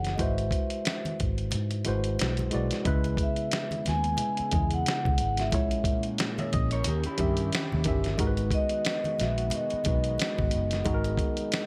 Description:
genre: R&B, neo-soul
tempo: 90 BPM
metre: 4/4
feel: swing 57% on 16ths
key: G# minor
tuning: A4 = 441 Hz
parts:
  - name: vibraphone with medium mallets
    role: melody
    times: 0.0-11.7 s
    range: D#5 to G#5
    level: -34 LUFS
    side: equal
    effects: none
  - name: tine electric piano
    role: accompaniment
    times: 0.0-11.7 s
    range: A#2 to E5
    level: -35 LUFS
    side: equal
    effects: overdrive
  - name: vintage muted fingered electric bass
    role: bass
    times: 0.0-11.2 s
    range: F#1 to G#2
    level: -32 LUFS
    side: equal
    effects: none
  - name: dusty soul sampler-style drum kit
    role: drums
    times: 0.0-11.7 s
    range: hi-hat, kick drum, snare drum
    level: -32 LUFS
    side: equal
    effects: none
  - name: congas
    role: percussion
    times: 0.2-11.7 s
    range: none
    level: -42 LUFS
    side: equal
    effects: none
  - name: warm analog pad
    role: sustained chords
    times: 2.8-11.7 s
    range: C#3 to G4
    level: -41 LUFS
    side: equal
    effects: chorus
  - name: electric guitar through a small old amp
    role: second line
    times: 6.4-8.0 s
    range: E4 to E5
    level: -38 LUFS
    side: equal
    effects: none
room: little or no reverb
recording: none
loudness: -28 LUFS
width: mono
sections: 0.0-11.7 A section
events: kick muted 1.5-2.9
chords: 0.2 G#7alt; 2.9 C#m7; 5.5 A#m7b5; 6.9 D#7b9; 8.2 G#m7

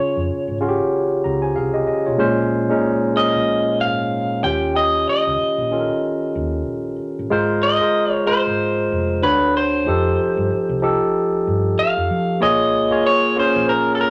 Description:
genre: R&B, neo-soul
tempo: 94 BPM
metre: 4/4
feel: swing 57% on 16ths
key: Bb dorian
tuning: A4 = 441 Hz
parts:
  - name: electric guitar through a small old amp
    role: melody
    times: 0.0-14.1 s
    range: A4 to G5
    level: -22 LUFS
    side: equal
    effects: none
  - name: barky tine electric piano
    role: accompaniment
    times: 0.0-14.1 s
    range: Bb2 to Bb5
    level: -21 LUFS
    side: equal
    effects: none
  - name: hollow-body short-scale fingered electric bass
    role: bass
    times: 0.2-14.1 s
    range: F1 to F3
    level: -29 LUFS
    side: equal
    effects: none
room: wet studio reverb, RT60 0.6 s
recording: none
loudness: -19 LUFS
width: mono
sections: 0.0-12.4 A section; 12.4-14.1 B section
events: tine electric piano fill 0.9-2.2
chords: 0.0 Dbmaj7; 2.2 Bbm9; 4.4 Eb9; 7.3 Ab69; 9.2 Dmaj7; 9.9 F9; 12.4 Bbm7

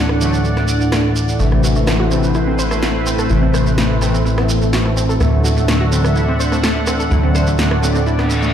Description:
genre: melodic techno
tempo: 126 BPM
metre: 4/4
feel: straight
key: unclear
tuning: A4 = 438 Hz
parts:
  - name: sweeping resonant pad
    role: sustained chords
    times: 0.0-8.5 s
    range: A3 to F#5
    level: -22 LUFS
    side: equal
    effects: chorus
  - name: tight sequencer bass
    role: bass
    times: 0.0-8.5 s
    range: A1 to D2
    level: -18 LUFS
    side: equal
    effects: none
  - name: analog drone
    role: drone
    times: 0.0-8.5 s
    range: A2 to E3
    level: -22 LUFS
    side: equal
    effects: chorus
  - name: granular cloud pad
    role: texture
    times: 0.0-8.5 s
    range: C4 to F#5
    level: -24 LUFS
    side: right 1 dB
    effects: built-in reverb
  - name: electronic rim click and snare drum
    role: drums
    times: 0.1-8.3 s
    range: none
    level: -22 LUFS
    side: left 1 dB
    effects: overdrive
  - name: analog synth brass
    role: stabs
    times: 0.2-8.0 s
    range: C3 to A3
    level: -21 LUFS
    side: left 2 dB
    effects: chorus, tape echo
  - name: shekere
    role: percussion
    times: 0.2-8.5 s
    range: none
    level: -28 LUFS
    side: right 4 dB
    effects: none
  - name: wide unison pluck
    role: arpeggios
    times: 1.4-8.5 s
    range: A3 to C5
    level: -23 LUFS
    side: right 1 dB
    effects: tape echo
  - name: reverse cymbal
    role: sound effects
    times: 8.2-8.5 s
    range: none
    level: -23 LUFS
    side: left 2 dB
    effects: none
room: moderate digital room reverb, RT60 1.2 s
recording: played on a big sound system in a bare room, large studio reverb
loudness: -13 LUFS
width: side -9 dB against mid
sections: 0.0-8.5 A section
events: reverse cymbal 8.2-8.5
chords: 0.0 D; 1.4 Am; 5.2 D

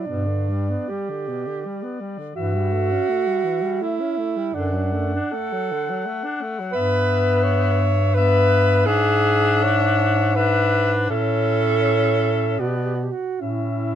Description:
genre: classical, lyrical piece for single-reed quartet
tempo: 69-88 BPM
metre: 3/4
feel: rubato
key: unclear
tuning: A4 = 444 Hz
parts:
  - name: clear clarinet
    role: melody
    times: 0.0-13.9 s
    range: D5 to F#5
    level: -27 LUFS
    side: left 10 dB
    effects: none
  - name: mellow alto saxophone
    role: second line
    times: 0.0-13.9 s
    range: C#4 to C#5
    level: -22 LUFS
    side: right 4 dB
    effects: none
  - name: mellow tenor saxophone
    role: accompaniment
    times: 0.0-13.9 s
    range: B2 to E4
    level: -26 LUFS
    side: left 3 dB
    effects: none
  - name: warm bass clarinet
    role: bass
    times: 0.1-13.9 s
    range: F#2 to B2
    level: -21 LUFS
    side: equal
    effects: none
room: light reverb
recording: none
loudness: -18 LUFS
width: side -10 dB against mid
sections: 0.0-13.9 A section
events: none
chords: 0.1 G; 2.4 A7/G; 4.5 D/F#; 6.7 Em/G; 8.9 E7/G#; 11.1 A; 12.6 Bm; 13.4 A

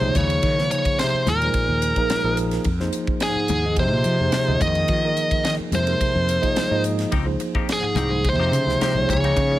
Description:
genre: electric jazz fusion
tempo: 108 BPM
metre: 4/4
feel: straight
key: unclear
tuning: A4 = 440 Hz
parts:
  - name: bluesy overdriven lead guitar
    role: melody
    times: 0.0-9.6 s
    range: Ab4 to Eb5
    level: -22 LUFS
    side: equal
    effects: distortion
  - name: warm bass clarinet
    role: second line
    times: 0.0-9.6 s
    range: Ab2 to Eb3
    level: -26 LUFS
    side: left 1 dB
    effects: none
  - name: tine electric piano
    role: accompaniment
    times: 0.0-9.6 s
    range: F3 to Eb5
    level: -26 LUFS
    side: right 2 dB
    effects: fast stereo tremolo
  - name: mellow fretless electric bass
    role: bass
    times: 0.0-9.6 s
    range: Bb1 to F3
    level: -24 LUFS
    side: equal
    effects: none
  - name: crisp fusion drum kit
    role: drums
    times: 0.1-9.5 s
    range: hi-hat, kick drum, ride cymbal, snare drum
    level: -27 LUFS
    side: equal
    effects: none
  - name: congas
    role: percussion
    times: 0.1-9.4 s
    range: none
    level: -33 LUFS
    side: left 6 dB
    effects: none
  - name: semi-hollow electric guitar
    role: stabs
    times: 7.1-9.6 s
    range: F3 to G4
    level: -31 LUFS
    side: left 7 dB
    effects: analog chorus
room: light reverb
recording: none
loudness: -18 LUFS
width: side -15 dB against mid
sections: 0.0-9.6 A section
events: none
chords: 0.0 Eb13sus4; 2.7 F7sus4; 7.1 Dbmaj9#11

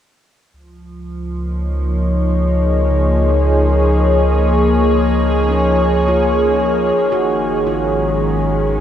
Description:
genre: ambient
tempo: free time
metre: none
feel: none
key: Db major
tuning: A4 = 440 Hz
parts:
  - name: evolving wavetable pad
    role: sustained chords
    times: 1.1-8.8 s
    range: Eb3 to Db5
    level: -15 LUFS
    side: equal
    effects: chorus, built-in reverb
  - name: warm sub bass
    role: bass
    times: 0.5-8.8 s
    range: Ab1 to Db2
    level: -18 LUFS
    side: equal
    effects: none
  - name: handpan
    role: arpeggios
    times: 2.3-8.8 s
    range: Db3 to Bb4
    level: -28 LUFS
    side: equal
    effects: none
room: wet huge ambient reverb, RT60 7.6 s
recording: cassette tape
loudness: -13 LUFS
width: side -10 dB against mid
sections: 0.5-8.8 A section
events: none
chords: 0.5 Db; 7.0 Absus2

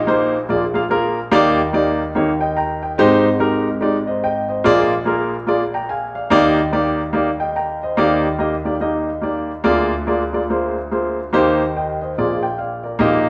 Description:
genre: gospel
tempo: 144 BPM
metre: 4/4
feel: swing 63% on 8ths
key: Eb major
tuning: A4 = 439 Hz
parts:
  - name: warm grand piano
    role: solo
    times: 0.0-13.3 s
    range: Ab1 to Bb5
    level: -18 LUFS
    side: equal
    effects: none
room: wet large studio reverb, RT60 1.4 s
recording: band playing live in one room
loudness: -18 LUFS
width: mono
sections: 0.0-8.0 A section; 8.0-13.3 B section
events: none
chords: 0.5 Bb7; 1.3 Ebmaj7; 2.2 Eb7; 3.0 Abmaj7; 4.6 Bb7; 6.3 Ebmaj7; 9.7 Bb7/D; 11.3 Eb6; 12.2 Bb7

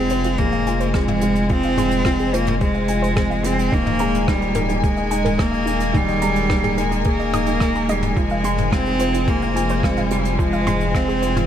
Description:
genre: piano and strings electronica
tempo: 108 BPM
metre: 4/4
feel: straight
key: F minor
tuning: A4 = 435 Hz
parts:
  - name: clear cello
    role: melody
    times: 0.0-11.5 s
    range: G3 to C4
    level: -21 LUFS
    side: equal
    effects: shimmer reverb
  - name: warm studio string section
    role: sustained chords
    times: 0.0-11.5 s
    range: Eb3 to Ab5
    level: -28 LUFS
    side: left 3 dB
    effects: shimmer reverb
  - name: felt-muted upright piano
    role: riff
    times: 0.0-11.5 s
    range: Eb3 to Ab4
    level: -25 LUFS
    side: right 1 dB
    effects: shimmer reverb
  - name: round analog bass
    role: bass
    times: 0.0-11.5 s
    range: Eb1 to F1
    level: -25 LUFS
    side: equal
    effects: sidechain pumping
  - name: warbly dusty pluck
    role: arpeggios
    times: 0.1-11.4 s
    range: Eb4 to Eb6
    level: -29 LUFS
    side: right 2 dB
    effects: chorus, sidechain pumping, tape echo, shimmer reverb
  - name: soft brush drum kit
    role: drums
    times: 0.1-11.5 s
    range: hi-hat, rim click, toms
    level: -28 LUFS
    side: left 1 dB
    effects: none
  - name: electronic kick drum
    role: drums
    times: 0.4-11.1 s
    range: none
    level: -21 LUFS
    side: equal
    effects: none
room: light reverb, small room ambience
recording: none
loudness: -17 LUFS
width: side -10 dB against mid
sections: 0.0-11.5 A section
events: none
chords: 0.0 Fm; 3.7 Ebsus4; 8.2 Fm

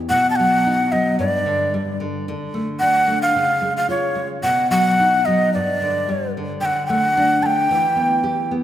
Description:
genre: andean folk, Andean ensemble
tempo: 111 BPM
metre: 2/4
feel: straight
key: unclear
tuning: A4 = 441 Hz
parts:
  - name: nylon-string guitar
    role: accompaniment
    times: 0.0-8.6 s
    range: G2 to G4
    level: -22 LUFS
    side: left 1 dB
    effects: none
  - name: breathy large quena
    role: melody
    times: 0.1-8.5 s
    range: C#5 to A5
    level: -17 LUFS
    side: equal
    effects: none
room: wet concert hall reverb, RT60 2.3 s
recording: none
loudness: -16 LUFS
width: side -11 dB against mid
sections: 0.1-8.6 A section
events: none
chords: 0.1 B; 1.2 G5; 2.3 D5; 3.4 C#; 4.5 B; 5.5 G5; 6.6 D; 7.7 Em

